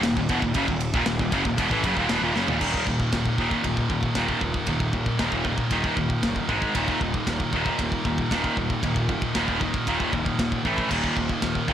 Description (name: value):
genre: heavy metal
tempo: 116 BPM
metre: 4/4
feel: straight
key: Eb minor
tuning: A4 = 440 Hz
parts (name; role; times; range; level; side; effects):
- distorted electric guitar; riff; 0.0-11.7 s; Eb2 to A3; -26 LUFS; right 1 dB; overdrive
- scooped high-gain guitar; riff; 0.0-11.7 s; Eb2 to Fb3; -28 LUFS; equal; distortion
- fuzz picked electric bass; bass; 0.0-11.7 s; Eb1 to A1; -30 LUFS; equal; overdrive
- tight metal drum kit; drums; 0.0-11.7 s; crash cymbal, kick drum, ride cymbal, snare drum, toms; -28 LUFS; equal; soft clipping on kick
room: studio reverb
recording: blown-out, overdriven recording, overdrive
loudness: -22 LUFS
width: side -10 dB against mid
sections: 0.0-2.6 A section; 2.6-11.7 B section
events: drum fill 2.4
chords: 0.0 Ebm; 2.6 Eb5; 6.5 Ab5; 6.8 Eb5; 10.6 A5; 10.9 Eb5